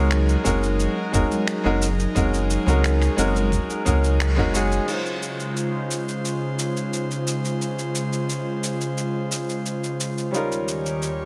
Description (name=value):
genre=sunset chillout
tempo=88 BPM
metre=4/4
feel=straight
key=Db major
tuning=A4 = 437 Hz
part: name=bright baby grand piano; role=accompaniment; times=0.0-11.3 s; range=G3 to C5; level=-28 LUFS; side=equal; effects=low-pass filter, delay
part: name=airy breathy pad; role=sustained chords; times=0.0-11.3 s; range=Eb2 to Db5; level=-29 LUFS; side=equal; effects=chorus
part: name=round analog bass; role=bass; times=0.0-4.8 s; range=Gb1 to Db2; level=-24 LUFS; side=equal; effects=none
part: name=dusty soul sampler-style drum kit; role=drums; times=0.1-11.2 s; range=cabasa, crash cymbal, finger snaps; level=-32 LUFS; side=equal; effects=small room ambience
part: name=congas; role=percussion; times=0.4-4.5 s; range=none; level=-34 LUFS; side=equal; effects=none
part: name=electronic kick drum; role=drums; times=0.5-4.5 s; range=none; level=-28 LUFS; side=equal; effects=small room ambience
room=light reverb, digital ambience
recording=none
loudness=-23 LUFS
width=mono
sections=0.0-4.9 A section; 4.9-11.3 B section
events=band accent 4.2-4.5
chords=0.0 Gb69; 4.9 Dbmaj7; 10.3 Eb7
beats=0.11 0.79 1.48 | 2.16 2.84 3.52 4.20 | 4.88 5.57 6.25 6.93 | 7.61 8.29 8.97 9.66 | 10.34 11.02